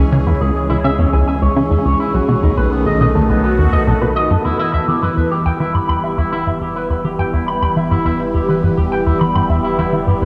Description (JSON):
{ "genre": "ambient, sequencer-driven space music", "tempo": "104 BPM", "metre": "4/4", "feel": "straight", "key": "E minor from 4.5 s", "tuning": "A4 = 440 Hz", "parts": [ { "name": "phased analog pad", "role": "sustained chords", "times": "0.0-10.2 s", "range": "D#3 to G#4", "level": "-21 LUFS", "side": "equal", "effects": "phaser, chorus" }, { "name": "electric guitar with an envelope filter", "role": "arpeggios", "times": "0.0-10.2 s", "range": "B3 to B5", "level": "-22 LUFS", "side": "equal", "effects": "delay" }, { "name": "plucky analog bass", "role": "riff", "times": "0.0-10.2 s", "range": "B1 to E3", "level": "-19 LUFS", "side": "equal", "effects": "delay" }, { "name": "warm sub bass", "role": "bass", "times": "0.0-10.2 s", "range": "E1 to C#2", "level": "-28 LUFS", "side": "equal", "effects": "none" } ], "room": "wet cathedral reverb, RT60 5.0 s", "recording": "in a vast, echoing space", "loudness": "-16 LUFS", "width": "mono", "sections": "0.0-4.5 A section; 4.5-10.2 B section", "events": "fade-in on sub bass 4.5-10.2; filter sweep on analog synth bass 4.5-10.2", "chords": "0.0 C#m; 2.1 B7; 4.5 Em" }